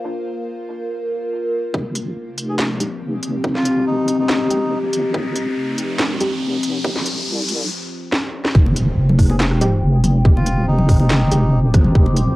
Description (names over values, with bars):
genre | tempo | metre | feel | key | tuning
deep dubstep | 141 BPM | 4/4 | half-time | unclear | A4 = 440 Hz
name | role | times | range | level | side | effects
overtone-sweeping drone | sustained chords | 0.0-12.4 s | F3 to C5 | -23 LUFS | left 1 dB | chorus, built-in reverb, cassette tape
deep soft wobble bass | bass | 1.7-12.4 s | F1 to C2 | -18 LUFS | equal | chorus, high-pass filter
electronic kick drum | drums | 1.7-12.0 s | none | -14 LUFS | equal | high-pass filter on kick, cassette tape, high-pass filter on room
riser and impact | sound effects | 3.7-10.3 s | none | -28 LUFS | equal | none
garage drum kit | drums | 2.0-12.3 s | handclaps, hi-hat, rim click, snare drum | -22 LUFS | equal | low-pass filter on hats, cassette tape, low-pass filter on snare, low-pass filter on room
melodica | melody | 2.5-4.8, 9.3-11.6 s | Eb4 to Ab4 | -29 LUFS | equal | cassette tape, dub echo
filtered dub chord stab | stabs | 2.8-6.3, 9.6-11.4 s | Ab3 to G4 | -27 LUFS | right 1 dB | chorus, cassette tape, dub echo
congas | percussion | 8.7-12.1 s | none | -24 LUFS | left 1 dB | none
room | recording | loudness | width
light reverb | home recording on cassette | -16 LUFS | side -18 dB against mid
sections
0.0-1.7 A section; 1.7-8.5 B section; 8.5-12.4 C section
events
build-up 1.7-8.5; filter sweep on synth drone 1.7-8.5; riser 3.7-7.7; drum fill 8.1-8.5; drop 8.5-12.4; impact 8.5-10.2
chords
0.0 Bb5; 1.7 F5; 8.5 F7(no3)